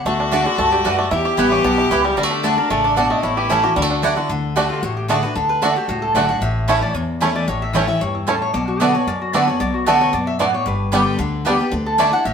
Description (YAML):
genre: bluegrass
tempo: 226 BPM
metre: 4/4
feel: straight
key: D major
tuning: A4 = 440 Hz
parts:
  - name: lap resonator guitar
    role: melody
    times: 0.0-12.3 s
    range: E4 to G5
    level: -21 LUFS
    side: left 1 dB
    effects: none
  - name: picked steel-string acoustic guitar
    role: accompaniment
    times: 0.0-12.3 s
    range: E2 to G4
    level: -22 LUFS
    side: left 2 dB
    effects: none
  - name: clear fiddle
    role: second line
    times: 0.1-4.1 s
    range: D4 to G4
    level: -22 LUFS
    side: left 4 dB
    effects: none
  - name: bluegrass banjo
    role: arpeggios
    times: 0.1-12.1 s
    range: D3 to G4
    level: -22 LUFS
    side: right 2 dB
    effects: none
  - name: upright bass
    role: bass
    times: 0.1-12.3 s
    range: G1 to F#2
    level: -27 LUFS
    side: equal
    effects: none
  - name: mandolin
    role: stabs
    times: 0.3-12.1 s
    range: A3 to A5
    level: -22 LUFS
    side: right 5 dB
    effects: none
room: wet stone room reverb, RT60 0.9 s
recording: band playing live in one room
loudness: -16 LUFS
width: side -7 dB against mid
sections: 0.0-4.3 A section; 4.3-12.3 B section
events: none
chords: 0.1 D; 1.1 Em; 2.2 D; 3.2 A; 3.8 Dadd9; 4.3 D; 6.4 A; 8.5 Bm7; 10.7 G; 11.7 Dsus2